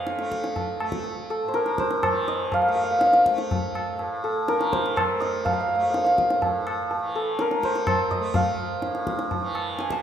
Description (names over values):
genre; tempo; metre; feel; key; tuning
indian classical, Hindustani; 123 BPM; 3/4; straight; A raga todi; A4 = 439 Hz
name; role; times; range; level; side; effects
santur; melody; 0.0-10.0 s; A4 to A5; -23 LUFS; equal; none
tanpura; drone; 0.0-10.0 s; A2 to A3; -32 LUFS; right 2 dB; none
tabla; percussion; 0.1-10.0 s; none; -29 LUFS; left 1 dB; none
room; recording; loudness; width
wet scoring stage reverb, RT60 1.5 s; minimal, uncompressed stereo recording; -22 LUFS; side -9 dB against mid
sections
0.0-10.0 A section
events
speeding up 0.0-10.0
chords
none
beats
0.07 0.56 | 1.06 1.55 2.04 | 2.53 3.02 3.50 | 3.99 4.48 4.97 | 5.45 5.94 6.42 | 6.91 7.39 7.87 | 8.35 8.83 9.31 | 9.79